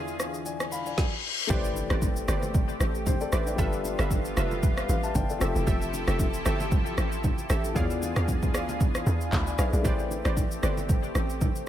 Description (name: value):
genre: amapiano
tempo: 115 BPM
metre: 4/4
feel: swing 55% on 16ths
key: A minor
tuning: A4 = 440 Hz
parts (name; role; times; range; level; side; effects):
- warm concert grand piano; accompaniment; 0.0-11.7 s; E3 to B5; -34 LUFS; left 6 dB; none
- lush unison pad; sustained chords; 0.0-11.7 s; E2 to A4; -36 LUFS; right 1 dB; chorus, sidechain pumping
- deep house drum kit; drums; 0.1-11.7 s; handclaps, kick drum, rim click, shaker, snare drum; -28 LUFS; equal; none
- reverse cymbal and impact; sound effects; 0.8-3.6 s; none; -34 LUFS; left 3 dB; none
- analog pluck; stabs; 1.5-10.8 s; F4 to F5; -36 LUFS; right 2 dB; chorus, ping-pong delay
- tight log drum bass; bass; 1.5-11.6 s; F1 to E2; -29 LUFS; equal; none
- congas and bongos; percussion; 1.5-11.5 s; none; -36 LUFS; right 2 dB; none
room: little or no reverb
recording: none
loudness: -24 LUFS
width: side -11 dB against mid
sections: 0.0-1.5 A section; 1.5-11.7 B section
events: reverse cymbal 0.8-1.5; impact 1.5-3.6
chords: 0.0 E7b9; 1.5 Am11; 3.6 G13; 5.4 Fmaj9; 7.8 E7b9; 9.8 Am11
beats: 0.46 0.98 | 1.50 2.02 2.54 3.06 | 3.59 4.11 4.63 5.15 | 5.67 6.20 6.72 7.24 | 7.76 8.28 8.80 9.32 | 9.85 10.37 10.89 11.41